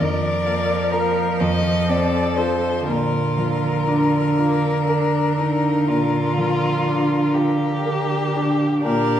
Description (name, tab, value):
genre	classical, slow romantic movement for piano quartet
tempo	41 BPM (dotted quarters)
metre	12/8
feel	rubato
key	Bb major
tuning	A4 = 440 Hz
part	rich violin	melody	0.0-9.2 s	Bb4 to Eb5	-24 LUFS	left 4 dB	none
part	clear cello	second line	0.0-9.2 s	D3 to G4	-23 LUFS	right 4 dB	none
part	clear violin	second line	0.0-9.2 s	Bb3 to Bb4	-26 LUFS	left 1 dB	none
part	clear concert grand piano	accompaniment	0.0-9.2 s	F2 to Bb4	-22 LUFS	equal	none
room	wet recital hall reverb, RT60 1.7 s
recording	heard from further back in the room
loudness	-17 LUFS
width	side -10 dB against mid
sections	0.0-8.8 A section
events	none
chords	0.0 Bb/F; 1.4 F; 2.9 Bb